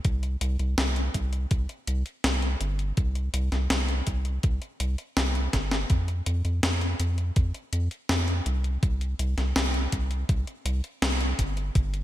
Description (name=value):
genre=synthwave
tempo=82 BPM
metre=4/4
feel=straight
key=unclear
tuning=A4 = 440 Hz
part: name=round analog bass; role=bass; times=0.0-12.0 s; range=G1 to F2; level=-26 LUFS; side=equal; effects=tube saturation
part: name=clean 12-bit digital drum machine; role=drums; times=0.0-12.0 s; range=hi-hat, snare drum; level=-29 LUFS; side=left 1 dB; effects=gated reverb
part: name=electronic kick drum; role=drums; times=0.0-11.9 s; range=none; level=-25 LUFS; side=equal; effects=none
room=light reverb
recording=bright 1980s-style digital production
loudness=-24 LUFS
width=side -14 dB against mid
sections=0.0-5.9 A section; 5.9-12.0 B section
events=drum fill 5.5-5.9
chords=none